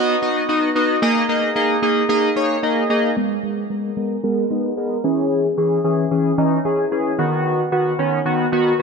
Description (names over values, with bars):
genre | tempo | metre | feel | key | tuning
pop | 112 BPM | 4/4 | straight | G# minor | A4 = 436 Hz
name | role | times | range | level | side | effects
chorused polysynth | solo | 0.0-8.8 s | D#3 to D#5 | -16 LUFS | equal | low-pass filter
room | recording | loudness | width
moderate lush hall reverb, RT60 2.7 s | dark, warm production | -17 LUFS | side -5 dB against mid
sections
0.0-3.2 A section; 3.2-8.8 B section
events
drop 0.0-3.2; filter sweep on analog polysynth 3.2-8.8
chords
0.0 B; 1.0 D#sus4; 3.2 G#madd9; 5.0 C#m; 7.2 B